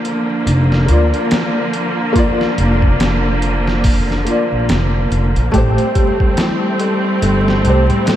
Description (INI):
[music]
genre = trip hop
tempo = 71 BPM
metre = 4/4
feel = swing 58% on 16ths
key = unclear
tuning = A4 = 440 Hz
[part]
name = felt-muted upright piano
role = accompaniment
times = 0.0-8.2 s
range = A3 to D5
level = -19 LUFS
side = left 1 dB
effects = tremolo, tape echo
[part]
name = rich studio string section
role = sustained chords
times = 0.0-8.2 s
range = D3 to C4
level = -18 LUFS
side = right 1 dB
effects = none
[part]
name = trip hop sampler-style drum kit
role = drums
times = 0.0-8.2 s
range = hi-hat, kick drum, snare drum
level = -18 LUFS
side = equal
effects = overdrive, studio reverb
[part]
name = upright bass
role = bass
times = 0.5-7.9 s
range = F1 to D2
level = -15 LUFS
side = equal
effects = none
[part]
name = dark detuned synth bell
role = arpeggios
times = 5.5-8.2 s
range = E4 to A4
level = -22 LUFS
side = left 2 dB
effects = chorus, tape echo
[part]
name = darbuka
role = percussion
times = 6.4-8.2 s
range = none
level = -24 LUFS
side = equal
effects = none
[sound]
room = moderate lush hall reverb, RT60 2.4 s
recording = dreamy mix soaked in reverb, vinyl crackle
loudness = -12 LUFS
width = side -12 dB against mid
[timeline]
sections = 0.0-8.2 A section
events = none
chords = 0.0 Bb; 5.5 Am7